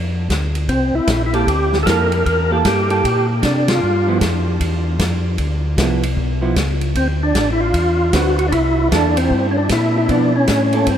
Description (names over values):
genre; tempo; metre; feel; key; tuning
soul jazz organ trio; 153 BPM; 4/4; swing 64% on 8ths; unclear; A4 = 439 Hz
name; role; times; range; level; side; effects
mellow tonewheel organ; bass; 0.0-11.0 s; A1 to C3; -19 LUFS; equal; slow rotary speaker
vintage drum kit; drums; 0.3-11.0 s; hi-hat, kick drum, ride cymbal, snare drum; -22 LUFS; equal; none
percussive tonewheel organ; melody; 0.7-4.2, 7.0-11.0 s; C4 to Bb4; -18 LUFS; equal; slow rotary speaker, overdrive, chorus vibrato
vintage hollow-body jazz guitar; accompaniment; 1.3-10.9 s; D3 to B4; -24 LUFS; right 4 dB; lush chorus
room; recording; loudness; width
moderate huge ambient reverb, RT60 7.3 s; dreamy mix soaked in reverb; -14 LUFS; side -9 dB against mid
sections
0.0-11.0 A section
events
band accent 3.6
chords
0.0 Dm; 0.7 C13; 3.8 G6; 7.0 D13; 8.5 C6; 10.1 Aadd9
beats
0.30 | 0.69 1.08 1.47 1.86 | 2.25 2.65 3.04 3.43 | 3.82 4.21 4.61 5.00 | 5.39 5.78 6.17 6.57 | 6.96 7.35 7.74 8.13 | 8.52 8.91 9.31 9.70 | 10.09 10.48 10.87